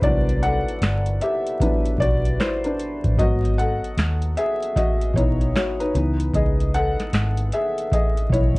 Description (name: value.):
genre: lo-fi hip hop.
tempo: 76 BPM.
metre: 4/4.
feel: swing 63% on 16ths.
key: unclear.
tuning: A4 = 438 Hz.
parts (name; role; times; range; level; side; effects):
felt-muted upright piano; accompaniment; 0.0-8.6 s; E3 to F#5; -23 LUFS; left 1 dB; none.
vintage muted fingered electric bass; bass; 0.0-8.6 s; G1 to D#2; -22 LUFS; equal; none.
booming analog drum machine; drums; 0.0-8.6 s; handclaps, hi-hat, kick drum, snare drum; -23 LUFS; equal; vintage 12-bit sampler grit.
room: light reverb.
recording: dark, warm production, vinyl crackle, nothing above 10.7 kHz.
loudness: -19 LUFS.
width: side -23 dB against mid.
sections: 0.0-8.6 A section.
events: felt piano solo 0.0-8.6.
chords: 0.0 Cmaj9#11; 3.2 G#m7.